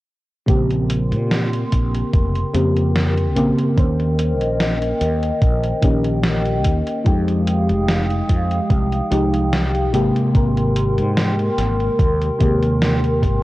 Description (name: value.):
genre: vaporwave.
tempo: 73 BPM.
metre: 4/4.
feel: swing 54% on 16ths.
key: Bb dorian.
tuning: A4 = 440 Hz.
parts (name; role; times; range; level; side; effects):
mellow FM electric piano; accompaniment; 0.5-13.4 s; C3 to C5; -20 LUFS; equal; wide subtle chorus, analog delay.
warbly tape-like pad; sustained chords; 0.9-13.4 s; Ab3 to Eb6; -24 LUFS; equal; chorus, built-in reverb, vintage 12-bit sampler grit.
mellow fretless electric bass; bass; 0.5-13.4 s; F1 to Bb2; -21 LUFS; equal; analog chorus.
electronic kick drum; drums; 0.5-13.4 s; none; -17 LUFS; equal; none.
gated 80s digital drum machine; drums; 0.5-13.4 s; hi-hat, snare drum; -24 LUFS; equal; gated reverb, gated reverb snare.
room: light reverb.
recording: worn, warbling old tape, cassette tape, warbly pitch drift.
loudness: -16 LUFS.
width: side -17 dB against mid.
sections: 0.5-13.4 A section.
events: none.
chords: 0.5 Bbm69; 3.8 Eb7; 7.1 Fm9; 9.9 Abmaj9.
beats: | 0.48 1.31 2.13 2.95 | 3.77 4.59 5.42 6.24 | 7.06 7.88 8.70 9.53 | 10.35 11.17 11.99 12.81.